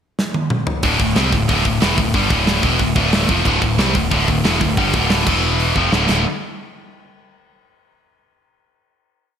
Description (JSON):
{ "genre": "heavy metal", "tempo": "183 BPM", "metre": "4/4", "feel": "straight", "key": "D minor", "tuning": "A4 = 440 Hz", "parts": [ { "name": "tight metal drum kit", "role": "drums", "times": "0.2-6.2 s", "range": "crash cymbal, hi-hat, kick drum, snare drum, splash cymbal, toms", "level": "-20 LUFS", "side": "right 1 dB", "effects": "gated reverb" }, { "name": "high-gain distorted guitar", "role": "riff", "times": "0.8-6.2 s", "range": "D2 to C4", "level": "-19 LUFS", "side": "left 9 dB", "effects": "distortion" }, { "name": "scooped high-gain guitar", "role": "riff", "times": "0.8-6.2 s", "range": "D2 to C4", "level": "-20 LUFS", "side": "right 9 dB", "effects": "distortion" }, { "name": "growling picked electric bass", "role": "bass", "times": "0.8-6.2 s", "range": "D1 to C2", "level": "-21 LUFS", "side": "equal", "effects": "overdrive" } ], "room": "moderate lush hall reverb, RT60 1.7 s, small room ambience", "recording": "bright 1980s-style digital production", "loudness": "-14 LUFS", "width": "side -8 dB against mid", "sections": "0.0-0.8 pickup bar; 0.8-6.1 riff; 6.1-7.4 final chord", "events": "drum fill 0.2-0.8, 5.8-6.1", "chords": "0.0 N.C.; 0.8 Dm; 5.3 E5; 5.8 Dm; 6.1 D5" }